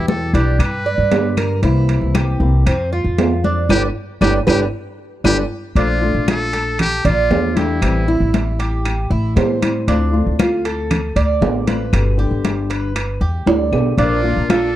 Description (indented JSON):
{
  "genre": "latin, Cuban son and guajira",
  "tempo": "117 BPM",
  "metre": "4/4",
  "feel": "straight",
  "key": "unclear",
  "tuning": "A4 = 440 Hz",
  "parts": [
    { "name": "trumpet with metal mute", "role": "melody", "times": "0.0-8.3, 14.0-14.8 s", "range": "E4 to B4", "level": "-23 LUFS", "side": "left 1 dB", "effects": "slapback echo" },
    { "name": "flamenco guitar", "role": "accompaniment", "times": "0.0-14.8 s", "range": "B2 to G4", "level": "-23 LUFS", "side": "left 3 dB", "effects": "none" },
    { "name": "Cuban tres", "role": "arpeggios", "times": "0.0-14.7 s", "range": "C4 to D5", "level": "-22 LUFS", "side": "right 3 dB", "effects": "none" },
    { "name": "upright bass", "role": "bass", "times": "0.0-14.8 s", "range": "G1 to A2", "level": "-18 LUFS", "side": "equal", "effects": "none" },
    { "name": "congas", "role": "percussion", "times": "0.1-14.8 s", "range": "none", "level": "-22 LUFS", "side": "left 3 dB", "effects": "none" },
    { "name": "timbales", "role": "percussion", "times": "0.1-14.8 s", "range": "none", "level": "-22 LUFS", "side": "right 4 dB", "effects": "none" },
    { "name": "claves", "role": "percussion", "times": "0.6-14.8 s", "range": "none", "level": "-32 LUFS", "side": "left 9 dB", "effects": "none" },
    { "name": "rich studio violin section", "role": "second line", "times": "14.0-14.8 s", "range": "Bb3 to D4", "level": "-26 LUFS", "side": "left 3 dB", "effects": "none" }
  ],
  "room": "little or no reverb",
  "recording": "dry, close 1970s-style studio recording",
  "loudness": "-14 LUFS",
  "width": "side -13 dB against mid",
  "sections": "0.0-5.8 A section; 5.8-14.8 B section",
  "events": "band accent 3.7-5.8; drum fill 4.7-5.8, 13.5-14.0",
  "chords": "0.0 Em; 0.6 G; 1.6 C7; 2.7 F; 3.7 G; 5.8 Bbmaj7; 7.8 Am7; 9.9 Dm7; 11.9 G; 14.0 Bb",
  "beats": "0.09 0.60 1.12 | 1.64 2.15 2.67 3.18 | 3.70 4.22 4.73 5.25 | 5.76 6.28 6.79 7.31 | 7.82 8.34 8.85 9.37 | 9.88 10.39 10.91 11.42 | 11.93 12.45 12.96 13.47 | 13.99 14.50"
}